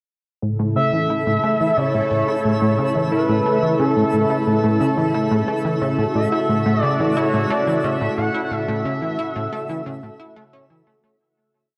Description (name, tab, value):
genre	ambient, sequencer-driven space music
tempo	89 BPM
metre	4/4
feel	straight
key	A major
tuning	A4 = 435 Hz
part	sweeping resonant pad	sustained chords	0.4-11.2 s	C#3 to A4	-25 LUFS	equal	chorus
part	plucky analog bass	riff	0.4-11.2 s	A2 to E4	-24 LUFS	equal	lush chorus, tape echo
part	twinkling granular texture	texture	1.2-11.2 s	E4 to E5	-32 LUFS	equal	built-in reverb
part	expressive synth lead	melody	0.8-10.5 s	A4 to F#5	-25 LUFS	equal	lush chorus, tape echo
room	wet plate reverb, RT60 3.5 s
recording	echo-heavy mix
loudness	-20 LUFS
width	mono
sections	0.4-11.2 A section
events	fade-out 7.6-11.2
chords	0.4 A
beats	| 0.42 1.10 1.77 2.45 | 3.12 3.79 4.47 5.14 | 5.82 6.49 7.17 7.84 | 8.51 9.19 9.86 10.54